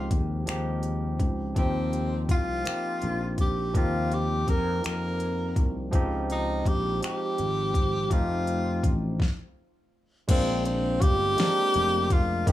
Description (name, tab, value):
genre	slow six-eight R&B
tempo	55 BPM (dotted quarters)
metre	6/8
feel	straight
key	Eb mixolydian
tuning	A4 = 438 Hz
part	breathy tenor saxophone	melody	0.0-12.5 s	C4 to Bb4	-28 LUFS	equal	slapback echo, plate reverb
part	barky tine electric piano	accompaniment	0.0-12.5 s	F3 to Bb4	-32 LUFS	right 1 dB	plate reverb
part	sustaining fretless electric bass	bass	0.0-12.5 s	F1 to F2	-29 LUFS	left 1 dB	none
part	smooth R&B drum kit	drums	0.1-12.5 s	crash cymbal, finger snaps, hi-hat, kick drum, snare drum	-25 LUFS	equal	none
room	light reverb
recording	small room ambience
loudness	-24 LUFS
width	side -14 dB against mid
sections	0.0-10.3 A section; 10.3-12.5 B section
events	stop 9.2-10.3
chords	0.0 Dbmaj9#11; 1.6 Eb69; 5.9 Dbmaj9#11; 8.1 F7; 10.3 Bb9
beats	0.47 | 1.56 2.65 | 3.75 4.84 | 5.93 7.02 | 8.11 9.20 | 10.29 11.38 | 12.47